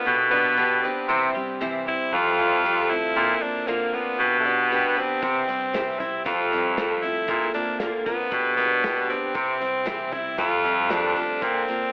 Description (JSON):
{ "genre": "folk rock and heartland rock", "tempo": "116 BPM", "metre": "4/4", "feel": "straight", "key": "C major", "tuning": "A4 = 439 Hz", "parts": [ { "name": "raspy tenor saxophone", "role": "melody", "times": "0.0-11.9 s", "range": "A3 to F4", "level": "-28 LUFS", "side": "equal", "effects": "tape echo" }, { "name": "picked steel-string acoustic guitar", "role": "accompaniment", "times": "0.0-11.9 s", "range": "Bb2 to C5", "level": "-32 LUFS", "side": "equal", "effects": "tape echo" }, { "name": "twelve-string electric guitar", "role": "riff", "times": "0.0-11.9 s", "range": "C3 to G4", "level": "-38 LUFS", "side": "equal", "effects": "phaser, tape echo" }, { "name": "bright baritone saxophone", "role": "bass", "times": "0.1-11.6 s", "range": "F2 to C3", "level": "-24 LUFS", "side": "equal", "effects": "none" }, { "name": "loose indie drum kit", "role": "drums", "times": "5.2-11.8 s", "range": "hi-hat, kick drum, snare drum", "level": "-38 LUFS", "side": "equal", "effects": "none" } ], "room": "light reverb", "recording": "echo-heavy mix, telephone sound", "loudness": "-23 LUFS", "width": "mono", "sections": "0.0-11.9 A section", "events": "none", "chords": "0.1 G/B; 1.1 C; 2.1 Fadd9; 3.2 Bbadd9; 4.2 G/B; 5.2 C; 6.3 Fadd9; 7.3 Bbadd9; 8.3 G/B; 9.4 C; 10.4 Fadd9; 11.4 Bbadd9" }